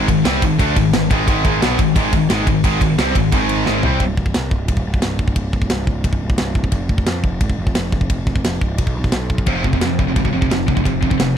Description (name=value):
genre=heavy metal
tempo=176 BPM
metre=4/4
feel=straight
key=unclear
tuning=A4 = 442 Hz
part: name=high-gain distorted guitar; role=riff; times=0.0-4.0, 9.5-11.3 s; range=F2 to D4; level=-21 LUFS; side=left 12 dB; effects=distortion
part: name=high-gain distorted guitar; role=riff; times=0.0-4.0 s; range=Ab2 to D4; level=-21 LUFS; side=left 1 dB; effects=distortion
part: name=tight distorted guitar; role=riff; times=0.0-4.0, 9.5-11.4 s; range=F2 to D4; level=-21 LUFS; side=right 14 dB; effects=distortion
part: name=fuzz picked electric bass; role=bass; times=0.0-11.4 s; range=C1 to F2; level=-22 LUFS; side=equal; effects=overdrive
part: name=tight metal drum kit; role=drums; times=0.1-11.3 s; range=kick drum, ride cymbal, snare drum, toms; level=-18 LUFS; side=equal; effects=none
room=little or no reverb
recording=dark, warm production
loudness=-15 LUFS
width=side -9 dB against mid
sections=0.0-4.0 A section; 4.0-11.4 B section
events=drum fill 3.7-4.0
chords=0.0 Ab5; 4.0 N.C.; 9.5 F5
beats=0.25 0.59 0.93 | 1.27 1.61 1.96 2.30 | 2.64 2.98 3.32 3.66 | 4.00 4.34 4.68 5.03 | 5.37 5.71 6.05 6.39 | 6.73 7.08 7.42 7.76 | 8.10 8.45 8.79 9.13 | 9.48 9.82 10.16 10.51 | 10.85 11.19